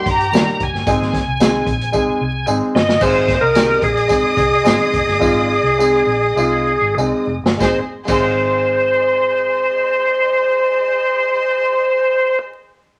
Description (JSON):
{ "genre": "uptempo 1960s-style soul", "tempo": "94-111 BPM", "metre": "4/4", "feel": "straight", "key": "Ab major", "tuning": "A4 = 436 Hz", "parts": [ { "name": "bright tonewheel organ", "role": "melody", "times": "0.0-12.4 s", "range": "Ab4 to Bb5", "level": "-18 LUFS", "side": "equal", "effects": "overdrive, chorus vibrato, slow rotary speaker" }, { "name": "warm studio string section", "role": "second line", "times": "0.0-12.4 s", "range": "G4 to Eb6", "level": "-27 LUFS", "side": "equal", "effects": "none" }, { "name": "warm upright piano", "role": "accompaniment", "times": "0.0-12.4 s", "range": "G3 to Ab4", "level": "-23 LUFS", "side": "equal", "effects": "none" }, { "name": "vintage muted fingered electric bass", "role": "bass", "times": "0.1-12.4 s", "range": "F1 to G2", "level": "-28 LUFS", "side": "equal", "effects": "none" }, { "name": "swinging big-band drum kit", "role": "drums", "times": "0.1-8.3 s", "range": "crash cymbal, hi-hat, kick drum, snare drum", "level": "-22 LUFS", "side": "equal", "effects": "none" }, { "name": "tambourine", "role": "percussion", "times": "0.3-8.3 s", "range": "none", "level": "-35 LUFS", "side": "equal", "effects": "none" } ], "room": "wet studio reverb, RT60 0.7 s", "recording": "vinyl crackle", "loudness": "-16 LUFS", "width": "mono", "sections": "0.0-3.0 A section; 3.0-7.6 B section; 7.6-12.7 C section", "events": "drum fill 1.9-3.0, 5.2-7.6; slowing down 3.0-7.6", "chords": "0.0 Eb; 0.9 Ab" }